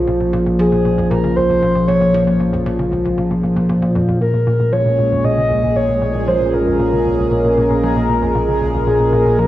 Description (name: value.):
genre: ambient, sequencer-driven space music.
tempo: 116 BPM.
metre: 4/4.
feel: straight.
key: Bb minor.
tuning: A4 = 441 Hz.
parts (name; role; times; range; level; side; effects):
sweeping resonant pad; sustained chords; 0.0-9.5 s; Bb2 to Bb4; -16 LUFS; equal; chorus, phaser, cassette tape.
warm sub bass; bass; 0.0-9.5 s; Bb1; -25 LUFS; equal; none.
hollow square pluck; riff; 0.1-9.5 s; Db2 to F3; -23 LUFS; equal; chorus, cassette tape, ping-pong delay.
breathy flute-like synth lead; melody; 0.6-9.5 s; Ab4 to Eb5; -18 LUFS; equal; chorus, cassette tape, ping-pong delay.
bubbling stepped-filter texture; texture; 4.4-9.5 s; Ab3 to Ab4; -25 LUFS; equal; chorus, built-in reverb, cassette tape.
room: wet studio reverb, RT60 0.6 s.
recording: home recording on cassette.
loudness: -13 LUFS.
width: side -14 dB against mid.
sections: 0.0-4.2 A section; 4.2-9.5 A section.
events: none.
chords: 0.0 Bbm7.